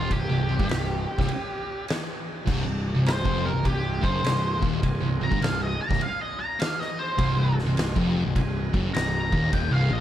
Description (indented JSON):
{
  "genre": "stoner and doom metal",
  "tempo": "102 BPM",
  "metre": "4/4",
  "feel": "swing 65% on 8ths",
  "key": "C minor",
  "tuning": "A4 = 441 Hz",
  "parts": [
    { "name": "octave-fuzz lead guitar", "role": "melody", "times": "0.0-10.0 s", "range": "F4 to Bb5", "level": "-30 LUFS", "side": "equal", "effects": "wah, distortion, digital delay" },
    { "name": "thick fuzz guitar", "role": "riff", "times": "0.0-10.0 s", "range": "C2 to Bb2", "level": "-26 LUFS", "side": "equal", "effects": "distortion" },
    { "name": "fuzz picked electric bass", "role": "bass", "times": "0.0-10.0 s", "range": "C1 to Bb1", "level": "-28 LUFS", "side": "equal", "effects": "overdrive" },
    { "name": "oversized low-tuned drum kit", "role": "drums", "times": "0.1-9.7 s", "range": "crash cymbal, kick drum, ride cymbal, snare drum", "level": "-28 LUFS", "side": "equal", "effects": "none" }
  ],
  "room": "little or no reverb",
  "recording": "dark, warm production",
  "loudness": "-23 LUFS",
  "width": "side -12 dB against mid",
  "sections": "0.0-10.0 A section",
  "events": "lead electric guitar solo 0.0-10.0",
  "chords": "0.0 Cm"
}